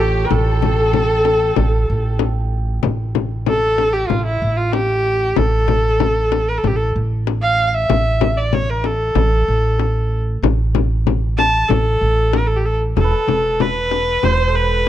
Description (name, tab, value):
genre	Persian modal ensemble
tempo	95 BPM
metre	4/4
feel	straight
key	A dastgah homayun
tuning	A4 = 440 Hz
part	rich kamancheh	melody	0.0-14.9 s	E4 to A5	-18 LUFS	equal	none
part	santur	second line	0.0-3.2, 13.0-14.9 s	F4 to C#5	-25 LUFS	right 5 dB	none
part	warm symphonic violin section	second line	0.0-2.2 s	G4 to A4	-24 LUFS	left 4 dB	none
part	upright bass	bass	0.0-14.9 s	E1 to A1	-18 LUFS	right 1 dB	none
part	frame drum	percussion	0.3-14.4 s	none	-20 LUFS	left 10 dB	none
room	small room ambience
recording	dry, close 1970s-style studio recording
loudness	-15 LUFS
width	side -12 dB against mid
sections	0.0-2.8 A section; 2.8-13.0 B section; 13.0-14.9 C section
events	none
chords	none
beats	| 0.30 0.93 1.56 2.20 | 2.83 3.46 4.09 4.73 | 5.36 6.00 6.63 7.26 | 7.89 8.53 9.16 9.79 | 10.43 11.06 11.70 12.33 | 12.96 13.60 14.23 14.86